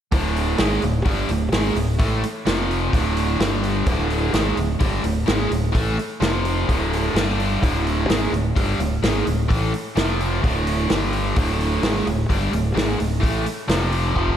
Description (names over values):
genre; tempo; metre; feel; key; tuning
classic rock; 128 BPM; 4/4; straight; unclear; A4 = 440 Hz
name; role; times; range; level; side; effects
biting overdriven guitar; riff; 0.1-14.4 s; D2 to A3; -22 LUFS; equal; none
growling fingered electric bass; bass; 0.1-14.4 s; D1 to A1; -24 LUFS; equal; overdrive
vintage drum kit; drums; 0.1-14.4 s; hi-hat, kick drum, snare drum; -24 LUFS; equal; none
room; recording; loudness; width
moderate concert hall reverb, RT60 1.8 s, small room ambience; big arena sound; -18 LUFS; side -10 dB against mid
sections
0.1-14.4 A section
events
drum fill 14.2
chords
0.1 D5; 2.5 F5; 2.9 D5; 3.4 G5; 3.9 D5; 6.2 F5; 6.7 D5; 7.2 G5; 7.6 D5; 10.0 F5; 10.4 D5; 10.9 G5; 11.4 D5; 13.7 F5